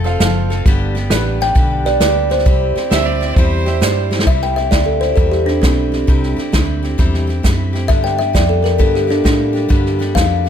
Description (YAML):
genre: honky-tonk and classic country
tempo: 133 BPM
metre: 4/4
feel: swing 66% on 8ths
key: C major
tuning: A4 = 440 Hz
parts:
  - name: picked steel-string acoustic guitar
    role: accompaniment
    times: 0.0-10.5 s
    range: G2 to A4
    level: -24 LUFS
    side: left 4 dB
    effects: none
  - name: warm upright piano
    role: accompaniment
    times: 0.0-4.2 s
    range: G4 to F5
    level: -23 LUFS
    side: right 7 dB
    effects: none
  - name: vintage muted fingered electric bass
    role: bass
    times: 0.0-10.5 s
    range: F1 to A2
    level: -18 LUFS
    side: equal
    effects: none
  - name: unplugged drum kit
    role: drums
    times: 0.1-10.5 s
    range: hi-hat, kick drum, snare drum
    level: -16 LUFS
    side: equal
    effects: none
  - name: kalimba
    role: melody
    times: 1.4-10.5 s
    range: C4 to G5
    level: -18 LUFS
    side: equal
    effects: tape echo
  - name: clear fiddle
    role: second line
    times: 2.9-4.2 s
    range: C5 to E5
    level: -23 LUFS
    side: right 8 dB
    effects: none
room: light reverb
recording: none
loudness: -12 LUFS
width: side -8 dB against mid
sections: 0.0-4.3 A section; 4.3-10.5 B section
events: drum fill 4.0; kalimba solo 4.3-10.5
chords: 0.0 F; 0.7 G; 2.5 C; 7.9 G